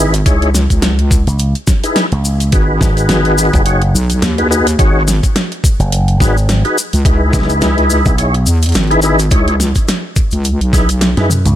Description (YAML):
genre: glitch hop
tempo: 106 BPM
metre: 4/4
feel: swing 56% on 16ths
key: unclear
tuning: A4 = 439 Hz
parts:
  - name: tonewheel organ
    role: stabs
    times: 0.0-11.3 s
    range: D#4 to C#5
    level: -16 LUFS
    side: left 1 dB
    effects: chorus vibrato, slow rotary speaker, sidechain pumping, ping-pong delay
  - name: wobble bass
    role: bass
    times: 0.0-11.2 s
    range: G#1 to E2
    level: -13 LUFS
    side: equal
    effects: chorus, tube saturation
  - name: dubstep drum kit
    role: drums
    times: 0.1-11.6 s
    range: hi-hat, snare drum, toms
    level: -19 LUFS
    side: equal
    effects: small room ambience
  - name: cabasa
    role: percussion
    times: 0.1-11.6 s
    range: none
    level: -22 LUFS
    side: left 3 dB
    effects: none
  - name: electronic kick drum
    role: drums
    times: 0.3-10.9 s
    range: none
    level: -13 LUFS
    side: equal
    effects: small room ambience
  - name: slap bass with an envelope filter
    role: bass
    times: 1.3-11.6 s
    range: F#1 to F#2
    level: -13 LUFS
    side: equal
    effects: tube saturation
room: little or no reverb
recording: none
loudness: -10 LUFS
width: side -12 dB against mid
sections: 0.0-11.6 A section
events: drum fill 11.2-11.6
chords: 0.0 C#m7; 2.5 G#m7; 7.1 C#m7